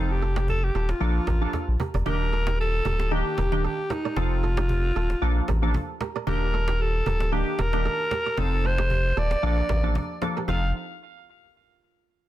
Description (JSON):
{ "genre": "afrobeats", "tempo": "114 BPM", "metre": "4/4", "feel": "swing 55% on 16ths", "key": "F mixolydian", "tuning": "A4 = 440 Hz", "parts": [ { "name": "growling alto saxophone", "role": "melody", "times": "0.0-10.7 s", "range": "Eb4 to F5", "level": "-29 LUFS", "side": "equal", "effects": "ping-pong delay" }, { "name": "glassy wavetable pluck", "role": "accompaniment", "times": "0.0-10.7 s", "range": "Eb3 to A4", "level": "-30 LUFS", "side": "right 1 dB", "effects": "chorus" }, { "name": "kora", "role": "riff", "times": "0.0-10.6 s", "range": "Eb4 to D5", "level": "-34 LUFS", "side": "right 8 dB", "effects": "none" }, { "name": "saturated sub bass", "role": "bass", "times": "0.0-10.7 s", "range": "D1 to Bb1", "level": "-24 LUFS", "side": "equal", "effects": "none" }, { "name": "cajon", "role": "drums", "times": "0.1-10.6 s", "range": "none", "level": "-33 LUFS", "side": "equal", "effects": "none" } ], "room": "little or no reverb", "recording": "dense, heavily limited modern master", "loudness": "-22 LUFS", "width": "side -14 dB against mid", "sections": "0.0-2.1 A section; 2.1-10.5 B section; 10.5-12.3 C section", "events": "drum fill 1.5-2.1", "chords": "0.0 F7; 1.0 Bbmaj7; 2.1 Ebmaj7; 4.2 F7; 5.2 Bbmaj7; 6.3 Ebmaj7; 8.4 F7; 9.4 Bbmaj7; 10.5 F7" }